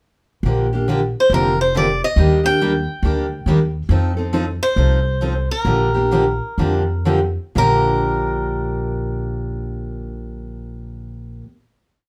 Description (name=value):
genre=acoustic string swing (jazz manouche)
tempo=118-139 BPM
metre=4/4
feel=swing 63% on 8ths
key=Bb major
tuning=A4 = 440 Hz
part: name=upright bass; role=bass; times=0.4-11.4 s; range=F1 to F2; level=-23 LUFS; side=equal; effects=none
part: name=picked steel-string acoustic guitar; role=accompaniment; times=0.5-11.5 s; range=Bb2 to A4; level=-22 LUFS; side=equal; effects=none
part: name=picked swing-style acoustic guitar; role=melody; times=1.2-11.4 s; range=Bb4 to G5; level=-23 LUFS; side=equal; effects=none
room=moderate studio reverb, RT60 0.5 s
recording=none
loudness=-18 LUFS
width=mono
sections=0.4-7.6 A section; 7.6-11.6 final chord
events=slowing down 3.9-7.6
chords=0.4 Bb6; 2.2 Ebmaj7; 3.9 F7; 5.6 Bb6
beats=| 0.44 0.87 1.30 1.74 | 2.17 2.60 3.03 3.46 | 3.89 4.33 4.76 5.20 | 5.65 6.11 6.58 7.06 | 7.55 8.06 8.57 9.07 | 9.58 10.09 10.59 11.10